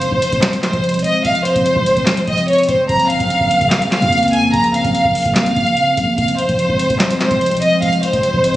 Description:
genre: hip hop, trap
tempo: 146 BPM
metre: 4/4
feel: half-time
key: F minor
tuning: A4 = 440 Hz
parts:
  - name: warm studio violin section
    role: melody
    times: 0.0-8.6 s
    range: C5 to Bb5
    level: -15 LUFS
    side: equal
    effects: digital delay
  - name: hollow soft pad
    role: sustained chords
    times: 0.0-8.6 s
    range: Db3 to C4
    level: -20 LUFS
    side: equal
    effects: chorus
  - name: clean 808-style bass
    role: bass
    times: 0.0-8.6 s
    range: F1 to F2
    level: -24 LUFS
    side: equal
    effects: none
  - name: booming analog drum machine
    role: drums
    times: 0.0-8.6 s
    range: handclaps, hi-hat, kick drum, snare drum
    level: -20 LUFS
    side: equal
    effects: vintage 12-bit sampler grit
  - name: impact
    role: sound effects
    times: 0.0-1.2 s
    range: none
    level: -38 LUFS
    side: equal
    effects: none
room: light reverb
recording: recorded on a phone in the room, studio reverb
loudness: -13 LUFS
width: side -15 dB against mid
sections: 0.0-8.6 A section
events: impact 0.0-1.2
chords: 0.0 Fm; 2.9 Bbmadd9; 6.2 Fm

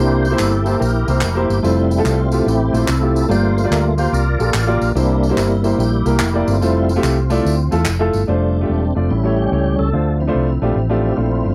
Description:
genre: uptempo gospel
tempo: 144 BPM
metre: 4/4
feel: swing 66% on 8ths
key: F major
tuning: A4 = 439 Hz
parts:
  - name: warm upright piano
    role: accompaniment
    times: 0.0-11.5 s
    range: G2 to F5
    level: -22 LUFS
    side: equal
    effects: none
  - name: tonewheel organ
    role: sustained chords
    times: 0.0-11.5 s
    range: F3 to D5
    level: -23 LUFS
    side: equal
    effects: overdrive, chorus vibrato, slow rotary speaker
  - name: hollow-body short-scale fingered electric bass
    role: bass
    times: 0.0-11.5 s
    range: E1 to E2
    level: -20 LUFS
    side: equal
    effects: none
  - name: tambourine and handclaps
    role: percussion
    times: 0.2-8.2 s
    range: none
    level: -30 LUFS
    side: equal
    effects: none
room: light reverb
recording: dry, close 1970s-style studio recording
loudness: -17 LUFS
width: mono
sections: 0.0-8.3 A section; 8.3-11.5 B section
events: tonewheel organ solo 0.0-8.3, 8.3-11.5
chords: 0.0 C7; 1.6 Fmaj7; 3.3 Gm7; 5.0 C7; 6.6 Fmaj7; 8.3 F6; 9.1 A7; 9.9 Dm7

